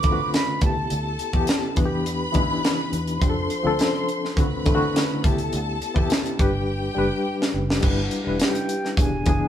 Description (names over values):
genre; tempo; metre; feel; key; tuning
lush 1970s-style soul; 104 BPM; 4/4; straight; G major; A4 = 439 Hz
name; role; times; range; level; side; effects
concert flute; melody; 0.0-1.2, 8.4-9.5 s; G5 to D6; -28 LUFS; right 4 dB; none
warm studio string section; second line; 0.0-7.8 s; G4 to C6; -29 LUFS; left 2 dB; none
reed electric piano; accompaniment; 0.0-9.5 s; D3 to B4; -25 LUFS; left 2 dB; fast tremolo
vintage muted fingered electric bass; bass; 0.0-9.4 s; E1 to F2; -28 LUFS; right 1 dB; none
tight funk drum kit; drums; 0.0-9.4 s; crash cymbal, hi-hat, kick drum, snare drum; -22 LUFS; equal; none
vibraphone with soft mallets; texture; 3.2-9.2 s; E4 to G4; -35 LUFS; right 1 dB; none
room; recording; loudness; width
moderate studio reverb, RT60 0.8 s; band playing live in one room; -20 LUFS; side -10 dB against mid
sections
0.0-7.8 A section; 7.8-9.5 A section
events
drum fill 6.7-7.8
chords
0.0 D7; 0.6 G69/D; 1.8 Em7; 3.2 F6; 4.4 D7; 5.2 G69/D; 6.4 Gmaj7; 7.8 G6; 9.0 E7